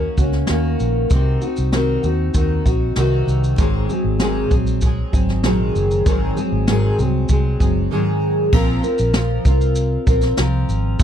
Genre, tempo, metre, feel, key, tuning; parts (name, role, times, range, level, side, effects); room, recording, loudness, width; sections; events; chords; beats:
acoustic pop; 97 BPM; 4/4; straight; Bb minor; A4 = 440 Hz
fingerpicked steel-string acoustic guitar; accompaniment; 0.0-11.0 s; Ab2 to Bb4; -19 LUFS; equal; double-tracked left and right
vintage muted fingered electric bass; bass; 0.0-11.0 s; Gb1 to Eb2; -20 LUFS; equal
jazz brush drum kit; drums; 0.2-11.0 s; crash cymbal, kick drum, shaker, snare drum; -19 LUFS; equal
little or no reverb; dry, close 1970s-style studio recording; -15 LUFS; side -9 dB against mid
0.0-8.5 A section; 8.5-11.0 B section
0.0 Ebm7; 1.1 Cdim; 3.6 Ab7; 8.5 Bbsus2
0.49 | 1.11 1.73 2.35 2.97 | 3.59 4.21 4.83 5.44 | 6.06 6.68 7.30 7.91 | 8.53 9.15 9.76 10.38 | 11.00